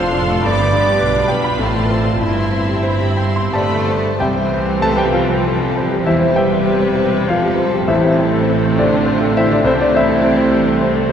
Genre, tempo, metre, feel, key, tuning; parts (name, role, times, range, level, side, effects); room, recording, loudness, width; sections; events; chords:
classical, romantic movement for piano and orchestra; 85-108 BPM; 3/4; rubato; C major; A4 = 440 Hz
clear grand piano; melody; 0.0-11.1 s; A1 to C6; -17 LUFS; left 1 dB
dark symphonic violin section; melody; 0.0-10.8 s; E4 to C6; -26 LUFS; left 4 dB
mellow clarinet; second line; 0.0-11.1 s; C4 to D5; -23 LUFS; equal
warm symphonic violin section; second line; 0.0-11.1 s; C4 to D6; -26 LUFS; left 1 dB
clear symphonic viola section; accompaniment; 0.0-11.1 s; C3 to A4; -22 LUFS; right 2 dB
rich symphonic cello section; bass; 0.0-10.8 s; F2 to A3; -22 LUFS; right 3 dB
rich symphonic double bass section; bass; 0.0-11.1 s; E1 to C2; -24 LUFS; right 2 dB
warm French horn section; sustained chords; 4.2-11.1 s; G3 to C4; -25 LUFS; left 2 dB
wet church reverb, RT60 3.8 s; -13 LUFS; side -8 dB against mid
0.0-4.2 A section; 4.2-11.1 B section
0.5 G; 1.6 F/A; 2.2 C/G; 3.5 G; 4.2 C; 6.1 C/E; 7.9 Am; 9.7 Am/C